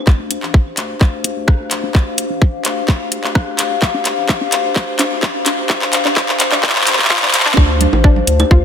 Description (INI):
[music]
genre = minimal techno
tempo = 128 BPM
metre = 4/4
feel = straight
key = D minor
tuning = A4 = 440 Hz
[part]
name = warbly tape-like pad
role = texture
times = 0.0-8.6 s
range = D4 to F5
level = -20 LUFS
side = left 3 dB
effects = chorus, built-in reverb, sidechain pumping
[part]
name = saturated sub bass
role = bass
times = 0.1-8.6 s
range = A1 to D2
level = -22 LUFS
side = equal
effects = sidechain pumping, high-pass filter
[part]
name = electronic kick drum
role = drums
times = 0.1-8.6 s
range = none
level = -11 LUFS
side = equal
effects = none
[part]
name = garage drum kit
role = drums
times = 0.1-8.5 s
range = handclaps, hi-hat, rim click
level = -16 LUFS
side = left 1 dB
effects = none
[part]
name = hollow square pluck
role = riff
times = 0.2-8.6 s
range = D4 to F4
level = -23 LUFS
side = equal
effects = chorus, sidechain pumping, digital delay
[part]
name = claves, congas and bongos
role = percussion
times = 7.6-8.5 s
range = none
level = -21 LUFS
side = right 5 dB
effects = digital delay
[sound]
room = moderate lush hall reverb, RT60 1.9 s, digital ambience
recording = high-pass filter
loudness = -12 LUFS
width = side -8 dB against mid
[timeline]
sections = 0.1-7.6 A section; 7.6-8.6 B section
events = build-up 0.1-7.6; drum fill 0.1-7.6; filter sweep on synth arpeggio sound 0.1-7.6; filter sweep 0.1-7.6; drop 7.6-8.6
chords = 0.1 Dm7